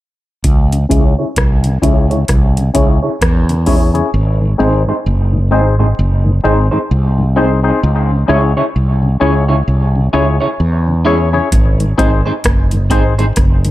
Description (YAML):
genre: dub reggae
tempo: 65 BPM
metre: 4/4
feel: swing 60% on 16ths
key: C# harmonic minor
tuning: A4 = 441 Hz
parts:
  - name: fretless electric bass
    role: bass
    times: 0.4-13.7 s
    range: F#1 to E2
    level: -13 LUFS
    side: equal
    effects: none
  - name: booming analog drum machine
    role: drums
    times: 0.4-4.1, 11.5-13.7 s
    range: hi-hat, kick drum, rim click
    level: -13 LUFS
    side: equal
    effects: overdrive
  - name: mellow tonewheel organ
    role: accompaniment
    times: 0.7-13.7 s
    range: G#2 to E4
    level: -22 LUFS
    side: left 2 dB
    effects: none
  - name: electric guitar at the edge of break-up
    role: accompaniment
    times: 0.9-13.3 s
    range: B#3 to C#5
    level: -20 LUFS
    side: right 2 dB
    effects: low-pass filter, dub echo
  - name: percussive organ stab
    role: stabs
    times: 0.9-13.1 s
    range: B#3 to C#5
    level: -19 LUFS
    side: left 4 dB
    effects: chorus, low-pass filter, dub echo
room: little or no reverb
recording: none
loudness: -10 LUFS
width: side -15 dB against mid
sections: 0.4-13.7 A section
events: filter sweep 0.4-13.7; part muted 4.1-11.5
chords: 0.4 C#m; 4.1 G#; 7.8 C#m; 11.5 G#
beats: | 0.44 1.37 2.29 3.21 | 4.13 5.06 5.98 6.90 | 7.83 8.75 9.67 10.60 | 11.52 12.44 13.36